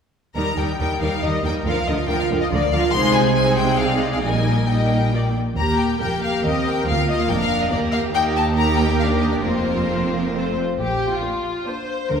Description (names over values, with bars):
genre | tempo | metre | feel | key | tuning
quick classical-period movement for string orchestra | 138 BPM | 3/4 | rubato | Eb major, Bb major from 8.1 s | A4 = 439 Hz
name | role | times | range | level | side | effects
rich studio violin section | melody | 0.3-12.0 s | C5 to C6 | -24 LUFS | left 4 dB | none
rich studio violin section | second line | 0.4-12.2 s | F4 to Eb5 | -24 LUFS | left 2 dB | none
clear studio viola section | accompaniment | 0.4-12.0 s | F3 to Bb4 | -24 LUFS | right 2 dB | none
clear studio cello section | bass | 0.4-12.2 s | D2 to Eb3 | -25 LUFS | right 4 dB | none
clear studio double bass section | bass | 0.4-12.2 s | F1 to Eb2 | -25 LUFS | right 1 dB | none
room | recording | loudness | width
wet concert hall reverb, RT60 1.7 s | heard from further back in the room | -18 LUFS | side -7 dB against mid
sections
0.4-10.8 A section; 10.8-12.2 B section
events
none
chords
0.4 Eb; 1.6 Bb/D; 2.9 Ab/C; 4.2 Eb/Bb; 5.1 N.C.; 5.6 Eb; 6.9 Bb; 8.1 Eb; 9.4 Fsus4; 10.3 F; 10.8 Bb